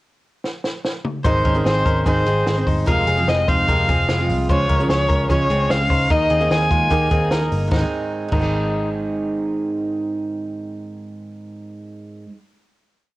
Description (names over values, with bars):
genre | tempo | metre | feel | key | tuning
jangly indie pop | 149 BPM | 4/4 | straight | Ab major | A4 = 440 Hz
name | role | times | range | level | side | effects
compact cocktail drum kit | drums | 0.4-8.4 s | crash cymbal, hi-hat, kick drum, snare drum, toms | -22 LUFS | equal | cassette tape
picked steel-string acoustic guitar | accompaniment | 1.2-12.4 s | F2 to Ab4 | -24 LUFS | right 3 dB | cassette tape
direct-recorded clean electric guitar | arpeggios | 1.2-8.9 s | Ab3 to C5 | -26 LUFS | left 3 dB | cassette tape
vintage muted picked electric bass | bass | 1.2-12.2 s | F1 to Eb2 | -22 LUFS | equal | none
warm violin | melody | 1.3-7.3 s | C5 to Ab5 | -20 LUFS | equal | cassette tape
room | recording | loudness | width
light reverb | home recording on cassette | -17 LUFS | side -18 dB against mid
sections
0.0-1.3 pickup bar; 1.3-7.7 verse; 7.7-10.9 final chord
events
drum fill 0.4-1.3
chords
0.0 N.C.; 1.3 Ab; 2.9 Fm; 4.5 Db; 6.1 Ebsus4; 7.7 Ab